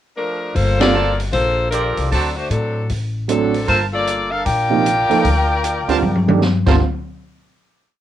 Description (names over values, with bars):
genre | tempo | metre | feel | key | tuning
jazz, big band swing | 154 BPM | 4/4 | swing 64% on 8ths | G minor | A4 = 440 Hz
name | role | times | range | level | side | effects
clear saxophone section | melody | 0.2-6.4 s | F3 to G5 | -19 LUFS | left 2 dB | cassette tape
upright bass | bass | 0.5-6.8 s | G1 to A2 | -21 LUFS | left 1 dB | none
open jazz drum kit | drums | 0.6-6.7 s | crash cymbal, hi-hat, kick drum, ride cymbal, snare drum, toms | -21 LUFS | left 1 dB | cassette tape
warm grand piano | accompaniment | 0.8-0.9, 3.3-6.8 s | C3 to A4 | -19 LUFS | right 7 dB | cassette tape
clear trumpet section | stabs | 0.9-6.8 s | F4 to A5 | -23 LUFS | right 7 dB | cassette tape
room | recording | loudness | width
moderate small room reverb, RT60 0.5 s | home recording on cassette | -15 LUFS | side -11 dB against mid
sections
0.0-0.6 pickup bar; 0.6-6.8 A section; 6.8-8.0 final hit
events
band accent 0.8; drum fill 6.0-6.4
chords
0.0 Fadd11; 0.6 Gm11; 2.1 D7; 3.7 Gm11; 6.8 N.C.